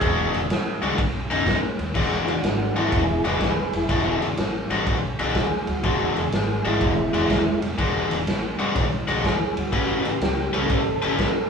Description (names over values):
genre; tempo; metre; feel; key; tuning
electric blues shuffle; 123 BPM; 4/4; swing 67% on 8ths; E mixolydian; A4 = 442 Hz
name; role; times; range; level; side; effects
bright upright piano; second line; 0.0-0.8 s; G#4 to E5; -29 LUFS; right 4 dB; none
overdriven semi-hollow guitar; riff; 0.0-11.3 s; B2 to B4; -24 LUFS; left 3 dB; none
upright bass; bass; 0.0-11.5 s; E1 to A2; -30 LUFS; equal; none
raw garage drum kit; drums; 0.0-11.3 s; crash cymbal, kick drum, ride cymbal, snare drum; -25 LUFS; equal; none
tonewheel organ; accompaniment; 2.3-11.5 s; G#3 to B4; -26 LUFS; right 2 dB; slow rotary speaker, overdrive
room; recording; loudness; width
moderate studio reverb, RT60 0.7 s; band playing live in one room, studio reverb; -20 LUFS; side -6 dB against mid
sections
0.0-2.0 A section; 2.0-11.5 A section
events
none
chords
0.0 E9; 1.0 B9; 2.0 E9; 9.7 A9